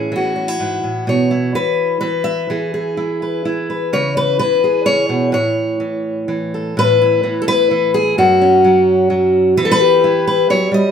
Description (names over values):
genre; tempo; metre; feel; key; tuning
folk, solo fingerstyle acoustic guitar; 128 BPM; 3/4; rubato; unclear; A4 = 443 Hz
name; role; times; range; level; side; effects
fingerpicked steel-string acoustic guitar; solo; 0.0-10.9 s; F#2 to E5; -13 LUFS; left 1 dB; none
room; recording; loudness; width
wet studio reverb, RT60 0.8 s; band playing live in one room; -13 LUFS; side -7 dB against mid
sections
0.0-6.8 A section; 6.8-10.9 B section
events
none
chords
0.0 A; 1.1 Bsus4; 2.5 E; 3.9 C#m; 5.3 A; 8.2 F#5; 9.6 Em